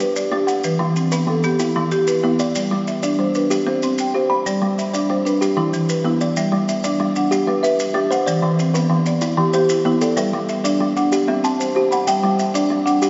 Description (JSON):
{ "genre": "southern african traditional, mbira-style interlocking cycle", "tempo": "126 BPM (dotted quarters)", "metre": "12/8", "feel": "straight", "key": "G major", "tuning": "A4 = 438 Hz", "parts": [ { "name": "kalimba", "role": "arpeggios", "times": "0.0-13.1 s", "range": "E3 to B5", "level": "-23 LUFS", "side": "equal", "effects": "none" }, { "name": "marimba with medium mallets", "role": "arpeggios", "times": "0.0-13.1 s", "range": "E3 to B5", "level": "-21 LUFS", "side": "equal", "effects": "none" }, { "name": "maracas", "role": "percussion", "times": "0.0-13.1 s", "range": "none", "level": "-33 LUFS", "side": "equal", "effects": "none" } ], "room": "wet cathedral reverb, RT60 5.2 s", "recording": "recorded in a church or concert hall, nothing above 7.6 kHz", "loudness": "-19 LUFS", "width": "mono", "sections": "0.0-6.4 A section; 6.4-13.1 B section", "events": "none", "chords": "0.0 G; 0.6 Em; 2.5 G; 3.5 C5; 4.5 G; 5.4 Em; 6.4 G; 8.3 Em; 10.2 G; 11.1 C; 12.1 G" }